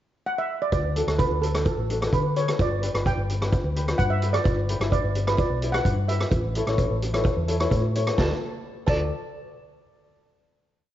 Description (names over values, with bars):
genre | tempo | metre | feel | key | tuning
calypso | 129 BPM | 4/4 | straight | D major | A4 = 442 Hz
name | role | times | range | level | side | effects
steel pan | melody | 0.3-9.1 s | A4 to A5 | -28 LUFS | right 3 dB | none
hollow-body short-scale fingered electric bass | bass | 0.7-9.1 s | G1 to D3 | -26 LUFS | left 1 dB | none
street-band drum kit | drums | 0.7-9.0 s | crash cymbal, hi-hat, kick drum, rim click, snare drum | -26 LUFS | equal | none
cowbell | percussion | 0.7-9.1 s | none | -35 LUFS | right 2 dB | none
tenor ukulele | accompaniment | 1.0-9.1 s | D4 to D5 | -30 LUFS | left 2 dB | none
room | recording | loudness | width
light reverb | nothing above 7.6 kHz | -22 LUFS | side -12 dB against mid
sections
0.0-0.7 pickup bar; 0.7-8.2 verse; 8.2-10.0 final chord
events
none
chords
0.0 N.C.; 0.7 D; 2.6 G; 4.5 Em7/G; 6.3 A; 8.2 D